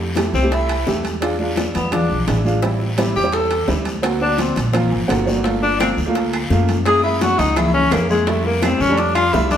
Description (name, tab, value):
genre	Afro-Cuban jazz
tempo	170 BPM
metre	4/4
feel	straight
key	F major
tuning	A4 = 440 Hz
part	warm upright piano	accompaniment	0.0-9.6 s	G3 to Ab5	-22 LUFS	right 2 dB	none
part	upright bass	bass	0.0-9.6 s	G1 to Gb2	-22 LUFS	equal	none
part	bongos	percussion	0.2-9.5 s	none	-28 LUFS	left 2 dB	none
part	congas	percussion	0.2-9.6 s	none	-27 LUFS	left 2 dB	none
part	guiro	percussion	0.2-9.6 s	none	-32 LUFS	left 2 dB	none
part	timbales	percussion	0.2-9.6 s	none	-30 LUFS	right 3 dB	none
part	warm tenor saxophone	second line	0.3-9.6 s	Ab3 to A4	-18 LUFS	left 1 dB	none
part	claves	percussion	5.8-9.3 s	none	-33 LUFS	right 2 dB	none
room	wet stone room reverb, RT60 1.4 s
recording	band playing live in one room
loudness	-15 LUFS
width	side -9 dB against mid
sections	0.0-9.6 A section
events	tenor saxophone solo 0.0-9.6; upright piano fill 4.7-5.4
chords	0.0 Fmaj9; 1.2 E7b9; 2.6 Am7; 4.0 D7alt; 5.4 Gm9; 6.9 Gb9; 8.3 Fmaj9